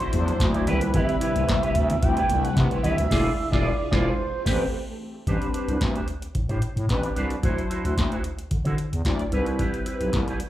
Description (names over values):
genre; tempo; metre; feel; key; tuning
early-eighties boogie funk; 111 BPM; 4/4; straight; A dorian; A4 = 440 Hz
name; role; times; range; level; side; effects
expressive portamento lead; melody; 0.0-5.0 s; C5 to C6; -28 LUFS; right 2 dB; chorus, slapback echo, plate reverb
mellow synth brass; accompaniment; 0.0-10.2 s; F3 to D5; -29 LUFS; left 2 dB; chorus, phaser, plate reverb, slapback echo
phased string machine; sustained chords; 0.0-5.3 s; C3 to B4; -34 LUFS; left 1 dB; ensemble chorus, phaser
electric guitar with an envelope filter; riff; 0.0-10.4 s; C4 to D5; -32 LUFS; right 4 dB; ensemble chorus, slapback echo
booming analog drum machine; drums; 0.0-10.5 s; crash cymbal, handclaps, hi-hat, kick drum, snare drum; -26 LUFS; equal; none
growling FM bass; bass; 0.1-10.3 s; E1 to D3; -25 LUFS; equal; none
congas; percussion; 0.1-3.1 s; none; -32 LUFS; right 1 dB; slapback echo
room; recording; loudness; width
light reverb; live gig heard through the venue's PA, club reverb; -22 LUFS; side -13 dB against mid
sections
0.0-5.3 A section; 5.3-10.5 B section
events
band accent 3.1-5.3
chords
0.0 D9; 0.7 Cmaj7; 3.1 E7b9; 4.2 Am9; 5.3 Am11; 7.4 D9; 9.3 Cmaj7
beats
0.41 | 0.95 1.49 2.03 2.57 | 3.11 3.65 4.19 4.73 | 5.27 5.81 6.35 6.89 | 7.43 7.97 8.51 9.05 | 9.60 10.14